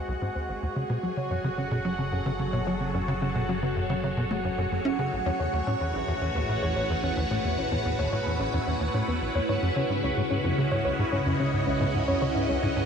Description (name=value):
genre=ambient, sequencer-driven space music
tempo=110 BPM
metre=4/4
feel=straight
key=unclear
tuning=A4 = 440 Hz
part: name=phased string machine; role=sustained chords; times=0.0-12.9 s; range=C#3 to F#5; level=-30 LUFS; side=equal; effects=ensemble chorus, phaser
part: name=soft round pluck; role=arpeggios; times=0.0-12.9 s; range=G#3 to C#5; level=-34 LUFS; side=moving between left 5 dB and right 2 dB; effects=chorus, auto-pan, cassette tape, ping-pong delay
part: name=tight sequencer bass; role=riff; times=0.0-12.8 s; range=G#1 to C#4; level=-29 LUFS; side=equal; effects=wide subtle chorus, ping-pong delay
part: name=analog drone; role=bass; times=1.5-12.9 s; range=F#1 to C#2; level=-36 LUFS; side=equal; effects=chorus
part: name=bubbling stepped-filter texture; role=texture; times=0.0-12.9 s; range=F#4 to F#5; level=-33 LUFS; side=right 1 dB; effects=chorus, built-in reverb
room=wet huge ambient reverb, RT60 8.0 s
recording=none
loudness=-25 LUFS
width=side -7 dB against mid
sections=0.0-12.9 A section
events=fade-in on synth arpeggio sound 0.0-12.9; fade-in on string machine 0.0-12.9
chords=0.0 G#7; 0.8 F#madd9; 5.1 Amaj7; 9.5 C#m7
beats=0.22 | 0.76 1.31 1.85 2.40 | 2.94 3.49 4.04 4.58 | 5.13 5.67 6.22 6.76 | 7.31 7.85 8.40 8.95 | 9.49 10.04 10.58 11.13 | 11.67 12.22 12.76